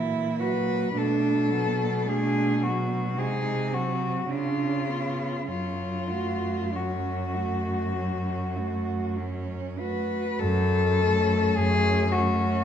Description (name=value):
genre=classical, lyrical piece for cello ensemble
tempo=48-55 BPM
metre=4/4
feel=rubato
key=F# minor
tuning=A4 = 438 Hz
part: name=clear cello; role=second line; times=0.0-12.6 s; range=B3 to F#4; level=-31 LUFS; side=right 7 dB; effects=none
part: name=rich cello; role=accompaniment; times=0.0-12.6 s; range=E3 to C#4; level=-32 LUFS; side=left 2 dB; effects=none
part: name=clear cello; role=bass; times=0.0-12.6 s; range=F#2 to C#3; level=-28 LUFS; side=right 2 dB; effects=none
part: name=rich cello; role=melody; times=0.4-12.6 s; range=E#4 to B4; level=-28 LUFS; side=left 5 dB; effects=none
room=wet recital hall reverb, RT60 1.6 s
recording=dark, warm production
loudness=-24 LUFS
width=side -9 dB against mid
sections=0.0-10.4 A section; 10.4-12.6 A section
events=none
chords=0.0 F#7/A#; 1.0 Bm7; 3.2 G#7/B#; 4.3 C#7b9; 5.5 F#m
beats=| 0.96 2.07 3.18 4.30 | 5.50 6.74 7.96 9.19 | 10.41 11.57